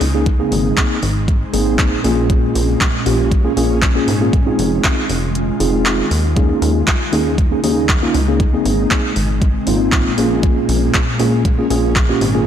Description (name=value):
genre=dance-pop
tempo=118 BPM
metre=4/4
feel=straight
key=unclear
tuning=A4 = 440 Hz
part: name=mellow tine electric piano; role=accompaniment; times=0.0-12.5 s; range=Bb3 to Ab4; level=-18 LUFS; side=equal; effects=medium stereo tremolo
part: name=ethereal airy pad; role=sustained chords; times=0.0-12.4 s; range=Bb2 to F4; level=-22 LUFS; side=equal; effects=ensemble chorus, built-in reverb, sidechain pumping
part: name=plucky analog bass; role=bass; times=0.0-12.5 s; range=F1 to Eb2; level=-19 LUFS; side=equal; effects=sidechain pumping
part: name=pop drum kit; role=drums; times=0.0-12.3 s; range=handclaps, hi-hat, kick drum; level=-17 LUFS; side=equal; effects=overdrive
room=light reverb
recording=blown-out, overdriven recording, overdrive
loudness=-13 LUFS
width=side -9 dB against mid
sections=0.0-12.5 A section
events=kick muted 5.3-6.4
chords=0.3 Abadd9; 2.0 Bbm7; 4.3 Fm7; 6.4 Eb7sus4; 8.4 Abadd9; 10.2 Bbm7